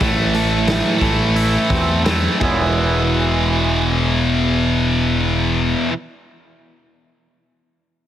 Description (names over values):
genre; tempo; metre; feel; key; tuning
quiet-loud alternative rock; 82-91 BPM; 4/4; straight; E major; A4 = 440 Hz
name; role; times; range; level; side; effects
twangy electric guitar; arpeggios; 0.0-5.9 s; A2 to E4; -22 LUFS; right 4 dB; harmonic tremolo
high-gain distorted guitar; riff; 0.0-5.9 s; E2 to A3; -18 LUFS; left 1 dB; distortion
growling fingered electric bass; bass; 0.0-5.7 s; E1 to E2; -20 LUFS; left 1 dB; overdrive
raw garage drum kit; drums; 0.0-2.6 s; crash cymbal, hi-hat, kick drum, snare drum; -23 LUFS; left 1 dB; none
room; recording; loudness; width
small room ambience; heavily compressed radio sound; -15 LUFS; side -11 dB against mid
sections
0.0-2.8 A section; 2.8-5.7 B section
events
slowing down 0.0-2.8; drum fill 2.4-2.8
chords
0.0 Am; 2.4 E